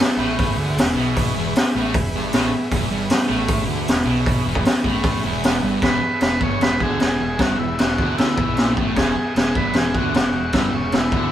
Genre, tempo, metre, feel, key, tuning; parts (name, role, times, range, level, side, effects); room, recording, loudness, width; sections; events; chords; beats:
garage rock duo or trio; 154 BPM; 4/4; straight; E mixolydian; A4 = 440 Hz
overdriven combo organ; sustained chords; 0.0-11.3 s; G#4 to E5; -31 LUFS; right 1 dB
fuzz guitar; riff; 0.0-11.3 s; E2 to D3; -24 LUFS; equal; distortion
raw garage drum kit; drums; 0.0-11.2 s; crash cymbal, hi-hat, kick drum, snare drum; -19 LUFS; equal
growling picked electric bass; bass; 0.2-11.3 s; E1 to D2; -28 LUFS; equal; overdrive
overdriven combo organ; melody; 5.8-11.3 s; C#4 to C#5; -25 LUFS; equal
moderate small room reverb, RT60 0.5 s; band playing live in one room; -17 LUFS; side -11 dB against mid
0.0-5.8 A section; 5.8-11.3 B section
0.0 E
0.38 0.77 | 1.16 1.55 1.94 2.33 | 2.72 3.11 3.50 3.89 | 4.28 4.67 5.06 5.45 | 5.84 6.23 6.62 7.01 | 7.40 7.79 8.19 8.58 | 8.97 9.36 9.76 10.15 | 10.54 10.93